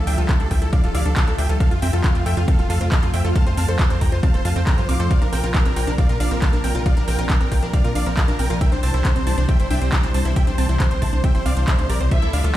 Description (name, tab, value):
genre	uplifting trance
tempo	137 BPM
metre	4/4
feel	straight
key	unclear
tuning	A4 = 442 Hz
part	big supersaw lead	melody	0.0-12.5 s	F4 to D6	-28 LUFS	equal	sidechain pumping, digital delay
part	wide unison pluck	second line	0.0-12.5 s	F4 to D6	-33 LUFS	equal	sidechain pumping, digital delay
part	lush unison pad	sustained chords	0.0-12.6 s	C3 to F4	-28 LUFS	right 1 dB	chorus, sidechain pumping
part	tight sequencer bass	bass	0.0-12.5 s	D1 to Bb2	-21 LUFS	equal	sidechain pumping
part	downlifter	sound effects	0.0-1.6 s	none	barely audible	none	none
part	analog pluck	arpeggios	0.1-12.5 s	C4 to C5	-31 LUFS	right 1 dB	chorus, phaser, sidechain pumping, digital delay
part	big-room dance drum kit	drums	0.1-12.5 s	handclaps, hi-hat	-29 LUFS	equal	sidechain pumping on hats, sidechain pumping on cymbals
part	electronic kick drum	drums	0.3-12.2 s	none	-18 LUFS	equal	none
part	warm studio violin section	second line	12.1-12.5 s	E4 to E5	-29 LUFS	equal	none
room	little or no reverb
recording	played on a big sound system in a bare room, stone room reverb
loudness	-16 LUFS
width	side -14 dB against mid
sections	0.0-12.6 A section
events	none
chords	0.0 Dmadd9; 1.6 F; 5.1 Bbadd9; 8.6 Cadd9